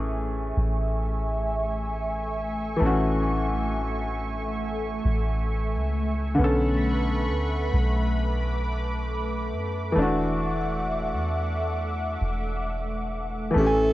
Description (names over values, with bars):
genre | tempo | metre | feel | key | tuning
R&B | 67 BPM | 4/4 | swing 58% on 16ths | A major | A4 = 436 Hz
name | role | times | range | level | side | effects
warm concert grand piano | accompaniment | 0.0-13.9 s | D3 to G#5 | -28 LUFS | left 1 dB | none
lush unison pad | sustained chords | 0.0-13.9 s | A3 to D6 | -30 LUFS | equal | chorus, phaser
soft 808-style bass | bass | 0.0-13.9 s | E1 to F#2 | -27 LUFS | equal | none
raspy alto saxophone | melody | 13.6-13.9 s | A4 | -22 LUFS | right 2 dB | none
room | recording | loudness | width
moderate studio ambience, RT60 0.5 s | none | -24 LUFS | side -16 dB against mid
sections
0.0-13.6 A section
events
none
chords
0.0 Amaj7; 6.4 Bm9; 10.0 E9sus4